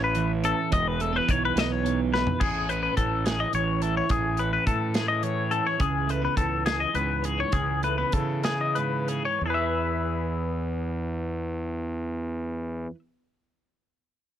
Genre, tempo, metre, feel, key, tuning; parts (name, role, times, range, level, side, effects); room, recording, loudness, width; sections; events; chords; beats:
math rock and midwest emo; 60-71 BPM (dotted quarters); 6/8; straight; E major; A4 = 442 Hz
clean electric guitar; accompaniment; 0.0-13.1 s; E2 to B4; -31 LUFS; right 8 dB
twangy electric guitar; arpeggios; 0.0-13.0 s; G#4 to E5; -27 LUFS; left 5 dB; phaser, plate reverb
fuzz fingered electric bass; bass; 0.0-12.9 s; E1 to C#3; -30 LUFS; equal; overdrive
modern studio drum kit; drums; 0.1-9.2 s; crash cymbal, hi-hat, kick drum, snare drum, toms; -29 LUFS; equal
light reverb; -24 LUFS; side -10 dB against mid
0.0-2.4 A section; 2.4-9.4 B section; 9.4-13.4 C section
drum fill 2.1; slowing down 5.8-9.4
0.0 A; 0.7 E5; 2.4 Amaj9; 5.8 C#m9; 9.4 E
| 0.73 1.57 | 2.42 3.26 | 4.11 4.96 | 5.80 6.66 | 7.53 8.45 | 9.41 10.41 | 11.41 12.40